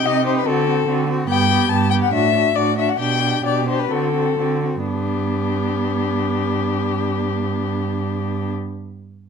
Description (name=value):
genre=quick classical-period movement for string quartet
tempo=118-147 BPM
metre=4/4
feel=rubato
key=G major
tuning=A4 = 439 Hz
part: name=rich violin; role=melody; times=0.0-8.5 s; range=G4 to A5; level=-21 LUFS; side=left 11 dB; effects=none
part: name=warm violin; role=second line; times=0.0-8.5 s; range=D4 to G4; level=-26 LUFS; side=left 4 dB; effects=none
part: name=warm viola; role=accompaniment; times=0.0-8.5 s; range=B3 to Eb4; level=-24 LUFS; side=right 4 dB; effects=none
part: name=rich cello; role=bass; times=0.1-8.5 s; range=G2 to D3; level=-23 LUFS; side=right 6 dB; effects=none
room=moderate large studio reverb, RT60 0.9 s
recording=none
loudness=-17 LUFS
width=side -6 dB against mid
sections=0.0-4.9 A section; 4.9-8.8 B section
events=slowing down 0.5-4.9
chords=0.5 D7; 1.3 G; 2.1 D/A; 3.0 G/B; 3.9 D7; 4.9 G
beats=0.06 0.47 0.88 | 1.29 1.71 2.13 2.56 | 3.00 3.45 3.91 4.39 | 4.89 5.38 5.87 6.36 | 6.84 7.33 7.82 8.30